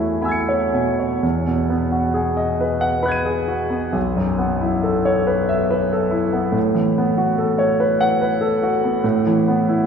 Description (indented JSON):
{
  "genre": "classical, impressionist solo piano",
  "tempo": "56-76 BPM",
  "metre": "3/4",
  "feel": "rubato",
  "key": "E major",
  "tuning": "A4 = 442 Hz",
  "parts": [
    { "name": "clear concert grand piano", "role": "solo", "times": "0.0-9.9 s", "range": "B1 to D#7", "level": "-17 LUFS", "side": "equal", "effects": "none" }
  ],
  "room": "wet cathedral reverb, RT60 6.3 s",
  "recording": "recorded in a church or concert hall, lossy compression artefacts",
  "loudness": "-17 LUFS",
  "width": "side -6 dB against mid",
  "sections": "0.0-1.2 A section; 1.2-9.9 B section",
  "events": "none",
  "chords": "0.0 E6; 1.2 Emaj9; 4.0 B11; 6.6 A69; 9.0 E5/A"
}